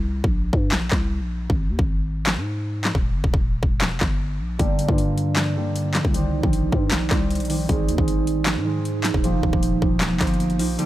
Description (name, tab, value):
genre	hip hop, trap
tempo	155 BPM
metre	4/4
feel	half-time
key	unclear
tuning	A4 = 443 Hz
part	growling 808-style bass	bass	0.0-10.8 s	Eb1 to Ab2	-25 LUFS	equal	none
part	dubstep drum kit	drums	0.2-10.9 s	handclaps, hi-hat, kick drum, snare drum	-22 LUFS	equal	none
part	concert harp	accompaniment	4.6-10.9 s	D3 to Ab4	-23 LUFS	right 2 dB	low-pass filter
room	digital ambience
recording	none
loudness	-19 LUFS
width	side -14 dB against mid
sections	0.0-10.9 A section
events	break 0.0-4.6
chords	0.0 C5; 1.5 Ab5; 3.0 Eb; 4.6 Gm; 6.1 Cm; 7.7 Ab; 9.2 Ebadd9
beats	0.34 0.72 1.11 | 1.50 1.89 2.27 2.66 | 3.05 3.43 3.82 4.21 | 4.59 4.98 5.37 5.76 | 6.14 6.53 6.92 7.30 | 7.69 8.08 8.47 8.85 | 9.24 9.63 10.01 10.40 | 10.79